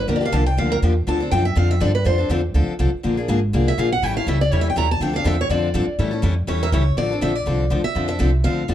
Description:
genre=acoustic string swing (jazz manouche)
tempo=244 BPM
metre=4/4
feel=swing 55% on 8ths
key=D minor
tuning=A4 = 438 Hz
part: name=picked steel-string acoustic guitar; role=melody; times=0.0-8.7 s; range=Bb4 to Bb5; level=-24 LUFS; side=equal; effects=plate reverb
part: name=upright bass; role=bass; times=0.0-8.7 s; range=Ab1 to A2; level=-20 LUFS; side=right 1 dB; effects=none
part: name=picked steel-string acoustic guitar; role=accompaniment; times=0.1-8.7 s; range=D3 to A4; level=-23 LUFS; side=left 3 dB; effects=none
room=light reverb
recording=dark, warm production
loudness=-17 LUFS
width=side -11 dB against mid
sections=0.0-7.0 A section; 7.0-8.7 B section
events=steel-string acoustic guitar solo 0.0-7.0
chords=0.0 Gm7; 1.1 Dm9; 3.0 Bb7; 4.0 A7; 5.0 Dm9; 6.0 A7; 7.0 Dm9

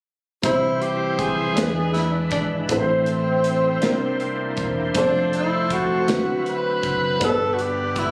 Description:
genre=slow gospel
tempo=53 BPM (dotted quarters)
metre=6/8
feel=straight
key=C major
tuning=A4 = 440 Hz
part: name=warm upright piano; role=accompaniment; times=0.4-8.1 s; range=G2 to C5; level=-26 LUFS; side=equal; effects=none
part: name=overdriven tonewheel organ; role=sustained chords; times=0.4-8.1 s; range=E3 to C5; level=-30 LUFS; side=equal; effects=slow rotary speaker, chorus vibrato
part: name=fingered electric bass with an envelope filter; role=bass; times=0.4-8.1 s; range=E1 to E2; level=-32 LUFS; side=equal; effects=none
part: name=modern studio drum kit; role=drums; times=0.4-8.1 s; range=hi-hat, kick drum, snare drum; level=-31 LUFS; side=equal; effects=none
part: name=breathy tenor saxophone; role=melody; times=0.5-8.1 s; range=C4 to B4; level=-26 LUFS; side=equal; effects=none
room=light reverb, studio ambience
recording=recorded on a phone in the room, club reverb, compression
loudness=-22 LUFS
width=mono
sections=0.4-8.1 A section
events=none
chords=0.4 C; 1.6 E7; 2.7 Am; 3.8 C9; 5.0 F; 6.1 D13; 7.2 G

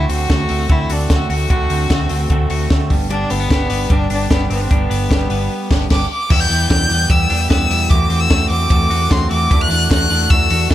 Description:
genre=jangly indie pop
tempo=150 BPM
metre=4/4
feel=straight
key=unclear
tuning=A4 = 440 Hz
part: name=rich violin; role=melody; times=0.0-10.7 s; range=B3 to G6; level=-20 LUFS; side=left 2 dB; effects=ping-pong delay
part: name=electric guitar at the edge of break-up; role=accompaniment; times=0.0-10.7 s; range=E2 to G4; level=-24 LUFS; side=right 6 dB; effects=none
part: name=twelve-string electric guitar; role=arpeggios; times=0.0-10.7 s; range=G2 to F#4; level=-24 LUFS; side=left 4 dB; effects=tube saturation
part: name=hollow-body short-scale fingered electric bass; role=bass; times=0.0-10.7 s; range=G1 to E2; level=-19 LUFS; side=equal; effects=none
part: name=compact cocktail drum kit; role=drums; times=0.1-10.7 s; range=crash cymbal, hi-hat, kick drum, ride cymbal, snare drum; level=-17 LUFS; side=equal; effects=none
room=light reverb, small room reverb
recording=none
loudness=-13 LUFS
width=side -13 dB against mid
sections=0.0-6.3 A section; 6.3-10.7 B section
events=band accent 5.5-6.3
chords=0.0 D7; 2.9 G; 6.3 Em; 7.9 F#dim/E; 9.5 D/E

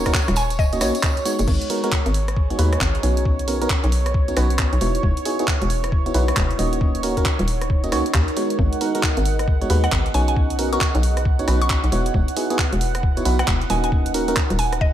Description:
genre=UK garage, two-step garage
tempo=135 BPM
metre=4/4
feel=swing 62% on 16ths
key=G# minor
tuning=A4 = 442 Hz
part: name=warm analog pad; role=sustained chords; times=0.0-14.9 s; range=C#5 to F#5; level=-30 LUFS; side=right 4 dB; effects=chorus, tremolo, sidechain pumping
part: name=FM electric piano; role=stabs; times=0.0-14.4 s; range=G#3 to D#5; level=-25 LUFS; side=equal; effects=chorus, ping-pong delay
part: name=hollow knocking FM bass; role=bass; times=0.0-14.9 s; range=D#1 to D#2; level=-21 LUFS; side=equal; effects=none
part: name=electronic kick drum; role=drums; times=0.1-14.9 s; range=none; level=-21 LUFS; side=equal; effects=none
part: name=house drum kit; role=drums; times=0.1-14.8 s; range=crash cymbal, handclaps, hi-hat, rim click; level=-26 LUFS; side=right 1 dB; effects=none
part: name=tambourine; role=percussion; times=0.1-1.5 s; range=none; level=-33 LUFS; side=right 2 dB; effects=none
part: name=mallet-like synth pluck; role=melody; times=0.4-1.0, 9.8-14.9 s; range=D#5 to C#6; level=-27 LUFS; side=equal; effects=chorus, ping-pong delay
part: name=deep dark ambient pad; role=texture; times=2.2-14.9 s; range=B3 to A#5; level=-30 LUFS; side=right 1 dB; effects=chorus, built-in reverb, sidechain pumping
room=moderate plate reverb, RT60 1.4 s, digital ambience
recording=dreamy mix soaked in reverb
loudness=-18 LUFS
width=side -11 dB against mid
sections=0.0-1.5 A section; 1.5-14.9 B section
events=drop 0.0-1.5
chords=0.0 D#m7; 1.5 G#m9; 3.3 Bmaj9; 4.8 Emaj7(no3); 6.6 D#m7; 8.6 G#m9; 10.4 Bmaj9; 11.9 Emaj7(no3); 13.7 D#m7

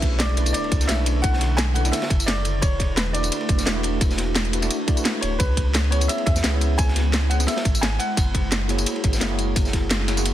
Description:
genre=liquid drum and bass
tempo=173 BPM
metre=4/4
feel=swing 53% on 16ths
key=B dorian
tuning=A4 = 443 Hz
part: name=bright grand piano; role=melody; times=0.0-8.5 s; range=B4 to G#5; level=-29 LUFS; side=equal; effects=tape echo
part: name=tine electric piano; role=accompaniment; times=0.0-10.3 s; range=A3 to F#5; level=-29 LUFS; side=equal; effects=overdrive, fast stereo tremolo
part: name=ethereal airy pad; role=sustained chords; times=0.0-10.3 s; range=D3 to C#6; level=-32 LUFS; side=right 1 dB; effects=ensemble chorus, built-in reverb
part: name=warm sub bass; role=bass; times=0.0-10.3 s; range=D1 to E2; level=-23 LUFS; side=equal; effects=none
part: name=crunchy breakbeat drum kit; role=drums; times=0.0-10.3 s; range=ride cymbal, snare drum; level=-31 LUFS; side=equal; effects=high-pass filter on cymbals, high-pass filter on snare, high-pass filter on room
part: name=electronic kick drum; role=drums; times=0.0-9.8 s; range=none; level=-21 LUFS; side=equal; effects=none
part: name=garage drum kit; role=drums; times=0.0-10.3 s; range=hi-hat, snare drum, tambourine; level=-25 LUFS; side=equal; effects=none
part: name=sub drop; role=sound effects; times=0.0-1.2 s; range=none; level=barely audible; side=none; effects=none
room=light reverb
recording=dense, heavily limited modern master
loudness=-19 LUFS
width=side -12 dB against mid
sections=0.0-10.3 A section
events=impact 0.0-1.2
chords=0.0 Bm11; 2.6 E9sus4; 5.4 C#m7; 8.0 F#9

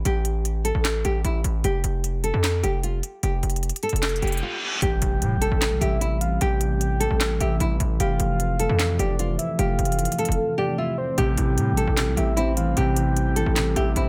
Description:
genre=hip hop, trap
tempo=151 BPM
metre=4/4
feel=half-time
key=A minor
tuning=A4 = 440 Hz
part: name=distorted 808-style bass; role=bass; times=0.0-14.1 s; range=F1 to A2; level=-26 LUFS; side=equal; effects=distortion
part: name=nylon-string guitar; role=melody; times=0.1-14.1 s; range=E4 to A4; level=-30 LUFS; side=equal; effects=none
part: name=trap drum kit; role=drums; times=0.1-14.1 s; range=handclaps, hi-hat, snare drum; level=-30 LUFS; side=equal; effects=none
part: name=reverse cymbal and impact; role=sound effects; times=4.2-6.4 s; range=none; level=-34 LUFS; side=equal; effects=none
part: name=soft octave-layered synth lead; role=second line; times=4.8-14.0 s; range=C5 to G5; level=-33 LUFS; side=equal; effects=chorus
part: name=dark analog pad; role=sustained chords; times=4.8-14.1 s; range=C3 to A3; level=-32 LUFS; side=equal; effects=chorus
part: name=dark grand piano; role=accompaniment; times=11.2-14.1 s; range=C3 to C4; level=-28 LUFS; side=equal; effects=none
room=digital ambience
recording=none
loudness=-23 LUFS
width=mono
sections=0.0-4.8 A section; 4.8-14.1 B section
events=reverse cymbal 4.2-4.8; break 4.4-4.8; impact 4.8-6.4; drums muted 10.4-11.2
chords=0.0 Emadd11/A (rootless); 1.6 Fsus2; 4.8 Am7; 8.0 Fmaj7; 11.2 Am7

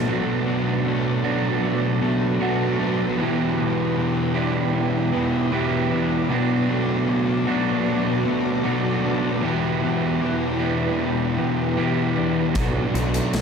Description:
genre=rock, shoegaze and dream pop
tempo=77 BPM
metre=4/4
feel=straight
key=B minor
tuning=A4 = 440 Hz
part: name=granular cloud pad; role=sustained chords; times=0.0-13.4 s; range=E4 to D6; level=-31 LUFS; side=right 1 dB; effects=built-in reverb
part: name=electric guitar through a small old amp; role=arpeggios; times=0.0-13.4 s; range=E3 to G4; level=-31 LUFS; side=left 1 dB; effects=analog chorus, digital delay
part: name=overdriven electric guitar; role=riff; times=0.0-13.4 s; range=B2 to G4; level=-23 LUFS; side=right 9 dB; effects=reverse reverb
part: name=thick fuzz guitar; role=riff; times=0.0-13.4 s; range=E2 to B3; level=-24 LUFS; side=left 8 dB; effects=distortion, lush chorus
part: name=fuzz picked electric bass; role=bass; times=12.6-13.4 s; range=B1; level=-25 LUFS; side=equal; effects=overdrive
part: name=big rock drum kit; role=drums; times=12.6-13.4 s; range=hi-hat, kick drum, snare drum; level=-29 LUFS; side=equal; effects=none
part: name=tambourine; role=percussion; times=12.6-13.4 s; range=none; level=-42 LUFS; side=left 9 dB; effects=none
room=light reverb, small room ambience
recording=dark, warm production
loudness=-20 LUFS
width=side -6 dB against mid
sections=0.1-13.4 A section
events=none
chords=0.1 Bm7; 3.2 Em7; 6.3 Bm7; 9.4 Em7; 12.6 Bm7

